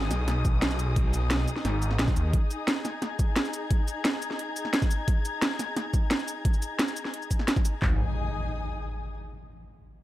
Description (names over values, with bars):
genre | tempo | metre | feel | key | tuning
dark technical drum and bass | 175 BPM | 4/4 | straight | G# minor | A4 = 440 Hz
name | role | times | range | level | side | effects
snarling distorted saw bass | bass | 0.0-2.3, 7.8-8.0 s | G#1 to D#2 | -27 LUFS | equal | distortion, sidechain pumping
dark studio string section | texture | 0.0-9.2 s | D#4 to G#6 | -35 LUFS | left 3 dB | sidechain pumping
drum and bass drum kit | drums | 0.1-7.7 s | hi-hat, shaker, snare drum | -28 LUFS | right 1 dB | overdrive
drum and bass drum kit | drums | 0.4-7.9 s | handclaps, kick drum | -25 LUFS | equal | overdrive
impact | sound effects | 7.8-9.2 s | none | -32 LUFS | equal | none
room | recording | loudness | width
little or no reverb | none | -25 LUFS | side -15 dB against mid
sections
0.0-7.8 A section; 7.8-9.2 B section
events
none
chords
0.0 G#5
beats
0.28 0.62 | 0.96 1.31 1.65 1.99 | 2.33 2.68 3.02 3.36 | 3.71 4.05 4.39 4.74 | 5.08 5.42 5.76 6.11 | 6.45 6.79 7.13 7.48 | 7.82 8.16 8.51 8.85